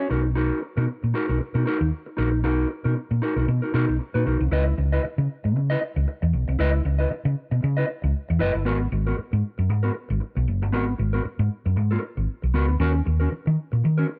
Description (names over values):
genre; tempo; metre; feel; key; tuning
disco; 116 BPM; 4/4; swing 56% on 16ths; C# dorian; A4 = 441 Hz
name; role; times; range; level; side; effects
mellow electric guitar; accompaniment; 0.0-14.1 s; B3 to D#5; -29 LUFS; equal; none
hollow-body short-scale fingered electric bass; bass; 0.1-14.0 s; F#1 to D#3; -24 LUFS; equal; none
room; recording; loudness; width
little or no reverb; none; -24 LUFS; mono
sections
0.0-4.5 A section; 4.5-14.2 B section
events
none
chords
0.1 Bmaj7; 4.5 C#m9; 8.7 G#m9; 12.8 D#m7